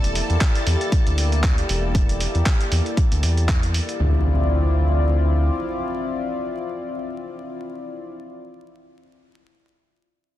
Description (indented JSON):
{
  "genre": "deep house",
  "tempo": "117 BPM",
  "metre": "4/4",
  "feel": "swing 56% on 16ths",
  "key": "D minor",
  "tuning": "A4 = 440 Hz",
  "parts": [
    { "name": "warm analog pad", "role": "sustained chords", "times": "0.0-8.2 s", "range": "Bb3 to D5", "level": "-27 LUFS", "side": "left 2 dB", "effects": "chorus, sidechain pumping" },
    { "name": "round analog bass", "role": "bass", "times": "0.0-5.5 s", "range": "E1 to E2", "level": "-19 LUFS", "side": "equal", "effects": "none" },
    { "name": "dusty soul sampler-style drum kit", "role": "drums", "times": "0.0-4.0 s", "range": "handclaps, hi-hat", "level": "-28 LUFS", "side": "right 1 dB", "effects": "none" },
    { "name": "string machine, violins", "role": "texture", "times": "0.0-4.0 s", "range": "A4 to A5", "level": "-33 LUFS", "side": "right 1 dB", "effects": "ensemble chorus, sidechain pumping" },
    { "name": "electronic kick drum", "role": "drums", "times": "0.4-3.6 s", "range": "none", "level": "-19 LUFS", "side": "equal", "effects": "none" },
    { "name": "impact", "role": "sound effects", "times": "4.0-8.2 s", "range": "none", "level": "-31 LUFS", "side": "equal", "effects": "none" }
  ],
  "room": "little or no reverb",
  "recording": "dense, heavily limited modern master, vinyl crackle",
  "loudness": "-18 LUFS",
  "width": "side -14 dB against mid",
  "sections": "0.0-4.0 A section; 4.0-8.1 B section",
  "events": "none",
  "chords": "0.0 Em7b5; 4.0 Dm9"
}